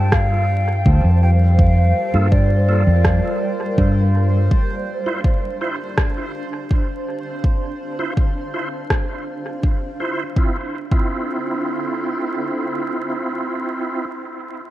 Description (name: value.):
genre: ambient dub.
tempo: 82 BPM.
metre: 4/4.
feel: straight.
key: D minor.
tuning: A4 = 437 Hz.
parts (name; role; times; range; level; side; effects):
mellow hollow silver concert flute; melody; 0.0-4.1 s; D5 to G5; -26 LUFS; left 1 dB; dub echo.
granular cloud pad; sustained chords; 0.0-13.9 s; G3 to F5; -29 LUFS; equal; built-in reverb.
fingered electric bass; bass; 0.0-4.5 s; D2 to G2; -14 LUFS; equal; none.
bubbling stepped-filter texture; texture; 0.0-10.4 s; C5; -30 LUFS; right 4 dB; chorus, built-in reverb.
electronic kick drum; drums; 0.1-11.1 s; none; -18 LUFS; equal; none.
electronic rim click; drums; 0.1-9.1 s; none; -25 LUFS; equal; dub echo.
bright tonewheel organ; stabs; 2.1-14.1 s; Bb3 to C5; -26 LUFS; right 2 dB; chorus vibrato, fast rotary speaker, low-pass filter, dub echo.
room: light reverb.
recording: vinyl crackle.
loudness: -17 LUFS.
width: side -15 dB against mid.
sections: 0.0-10.4 A section; 10.4-13.3 B section.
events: filter sweep on tonewheel organ 0.0-10.4.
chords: 0.0 Gm7; 4.5 Dm7.